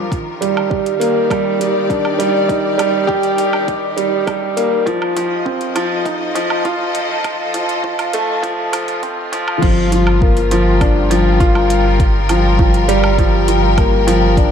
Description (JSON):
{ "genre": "piano and strings electronica", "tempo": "101 BPM", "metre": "4/4", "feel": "straight", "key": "G minor", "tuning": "A4 = 440 Hz", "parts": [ { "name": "warm studio string section", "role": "sustained chords", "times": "0.0-14.5 s", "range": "Eb3 to G5", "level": "-21 LUFS", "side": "left 3 dB", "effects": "sidechain pumping" }, { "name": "warm upright piano", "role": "riff", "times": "0.0-14.5 s", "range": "F3 to G4", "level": "-16 LUFS", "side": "right 1 dB", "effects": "digital delay" }, { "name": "deep house drum kit", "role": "drums", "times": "0.1-14.5 s", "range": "crash cymbal, hi-hat, woodblock", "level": "-26 LUFS", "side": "right 2 dB", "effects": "none" }, { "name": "electronic kick drum", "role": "drums", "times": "0.1-14.5 s", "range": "none", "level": "-16 LUFS", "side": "equal", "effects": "none" }, { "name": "warm sub bass", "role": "bass", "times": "9.6-14.5 s", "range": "G1", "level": "-16 LUFS", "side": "equal", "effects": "sidechain pumping" } ], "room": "moderate concert hall reverb, RT60 2.0 s", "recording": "dark, warm production, high-pass filter", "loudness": "-13 LUFS", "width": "side -7 dB against mid", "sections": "0.0-9.6 A section; 9.6-14.5 B section", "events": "build-up 0.0-9.6; filter sweep 0.0-9.6; drop 9.6-14.5", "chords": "0.1 Ebmaj7; 4.9 F7; 9.6 Gm7", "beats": "| 0.12 0.71 1.30 1.90 | 2.49 3.09 3.68 4.28 | 4.87 5.46 6.06 6.65 | 7.25 7.84 8.43 9.03 | 9.62 10.22 10.81 11.40 | 12.00 12.59 13.19 13.78 | 14.37" }